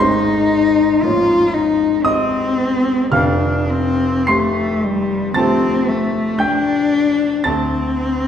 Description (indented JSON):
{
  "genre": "classical, impressionist duo for cello and grand piano",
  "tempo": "50-59 BPM",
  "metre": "4/4",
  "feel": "rubato",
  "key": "unclear",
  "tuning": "A4 = 440 Hz",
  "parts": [
    { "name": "rich cello", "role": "melody", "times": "0.0-8.3 s", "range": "G3 to F4", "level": "-16 LUFS", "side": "left 3 dB", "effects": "none" },
    { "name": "clear grand piano", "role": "accompaniment", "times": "0.0-8.3 s", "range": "F1 to C7", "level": "-18 LUFS", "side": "right 2 dB", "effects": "none" }
  ],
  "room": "wet recital hall reverb, RT60 1.6 s",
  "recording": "heard from further back in the room",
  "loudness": "-14 LUFS",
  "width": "side -8 dB against mid",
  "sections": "0.0-8.3 A section",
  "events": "none",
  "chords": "0.0 Bbm11/Ab; 3.1 Fadd9; 7.5 D7(no3)"
}